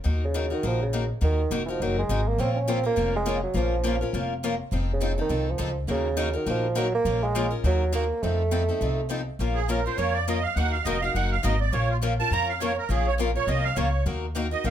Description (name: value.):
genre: acoustic string swing (jazz manouche).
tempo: 206 BPM.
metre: 4/4.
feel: swing 57% on 8ths.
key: Bb minor.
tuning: A4 = 439 Hz.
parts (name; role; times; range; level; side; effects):
picked steel-string acoustic guitar; accompaniment; 0.0-14.7 s; Eb3 to Bb4; -30 LUFS; left 6 dB; none.
upright bass; bass; 0.1-14.7 s; F1 to F2; -27 LUFS; equal; none.
mellow bassoon; melody; 0.2-9.1 s; Db3 to Db4; -27 LUFS; right 3 dB; plate reverb.
picked swing-style acoustic guitar; accompaniment; 2.4-14.7 s; Eb3 to Bb4; -34 LUFS; right 3 dB; none.
musette accordion; second line; 9.5-14.7 s; F4 to Bb5; -27 LUFS; right 6 dB; none.
room: light reverb.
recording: none.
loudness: -23 LUFS.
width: side -10 dB against mid.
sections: 0.0-9.4 A section; 9.4-14.7 B section.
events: accordion solo 9.4-14.7.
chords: 0.1 Ebm; 2.4 Bbm; 4.7 F7; 5.9 Ebm; 7.1 Bbm; 7.6 Ebm; 8.2 F7; 9.4 Bbm; 10.6 Ebm; 11.7 Bbm; 14.1 Ebm.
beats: | 0.05 0.34 0.64 0.93 | 1.22 1.51 1.80 2.10 | 2.39 2.68 2.97 3.26 | 3.56 3.85 4.14 4.43 | 4.72 5.01 5.31 5.60 | 5.89 6.18 6.47 6.77 | 7.06 7.35 7.64 7.93 | 8.23 8.52 8.81 9.10 | 9.39 9.69 9.98 10.27 | 10.56 10.85 11.15 11.44 | 11.73 12.02 12.31 12.61 | 12.90 13.19 13.48 13.78 | 14.07 14.36 14.65.